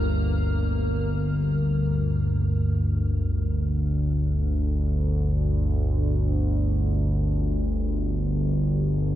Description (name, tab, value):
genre	ambient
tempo	free time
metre	none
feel	none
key	unclear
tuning	A4 = 440 Hz
part	analog drone	drone	0.0-9.2 s	G1 to D2	-22 LUFS	equal	chorus
room	moderate huge ambient reverb, RT60 8.0 s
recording	dark, warm production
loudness	-22 LUFS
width	side -13 dB against mid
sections	0.1-9.2 A section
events	none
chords	0.1 G5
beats	free time